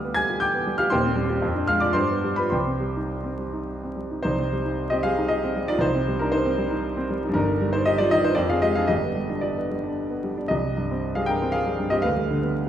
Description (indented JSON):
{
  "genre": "classical, romantic character piece for solo piano",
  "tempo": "102-120 BPM",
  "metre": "3/4",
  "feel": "rubato",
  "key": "C minor",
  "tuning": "A4 = 441 Hz",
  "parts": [
    { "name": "warm grand piano", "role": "solo", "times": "0.0-12.7 s", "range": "Eb1 to Ab6", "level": "-21 LUFS", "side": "equal", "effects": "none" }
  ],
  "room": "wet recital hall reverb, RT60 1.7 s",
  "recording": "recorded in a church or concert hall, vinyl crackle",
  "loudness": "-21 LUFS",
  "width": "side -10 dB against mid",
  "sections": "0.0-4.2 A section; 4.2-12.7 B section",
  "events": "none",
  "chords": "0.0 G7/D; 0.9 Cm/Eb; 1.4 Dm7b5/F; 1.9 G7; 2.5 Cm; 5.8 Cm9; 7.3 Eb/G; 8.4 Dm7b5/F; 8.9 G; 10.5 Cm; 12.0 G7/D"
}